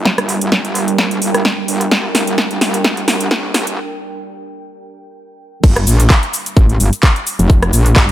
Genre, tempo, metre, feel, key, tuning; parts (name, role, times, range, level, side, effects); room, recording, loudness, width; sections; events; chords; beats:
bass house; 129 BPM; 4/4; swing 55% on 16ths; G minor; A4 = 439 Hz
deep dark ambient pad; sustained chords; 0.0-5.6 s; G3 to G5; -22 LUFS; right 3 dB; chorus, built-in reverb, sidechain pumping
metallic wobble bass; bass; 0.0-8.1 s; F1 to Bb1; -16 LUFS; equal; distortion, chorus, tube saturation, sidechain pumping, high-pass filter
big-room dance drum kit; drums; 0.1-8.1 s; crash cymbal, handclaps, hi-hat, rim click, shaker, snare drum; -16 LUFS; equal
electronic kick drum; drums; 0.1-8.1 s; -11 LUFS; equal; high-pass filter on kick
digital ambience; high-pass filter; -12 LUFS; side -13 dB against mid
0.0-5.6 A section; 5.6-8.1 B section
build-up 0.0-5.6; drum fill 0.0-3.8; filter sweep 0.0-5.6; break 3.8-5.6; drop 5.6-8.1
0.0 Gm
| 0.05 0.52 0.98 1.45 | 1.92 2.38 2.85 3.31 | 3.77 4.24 4.71 5.17 | 5.64 6.10 6.57 7.03 | 7.50 7.96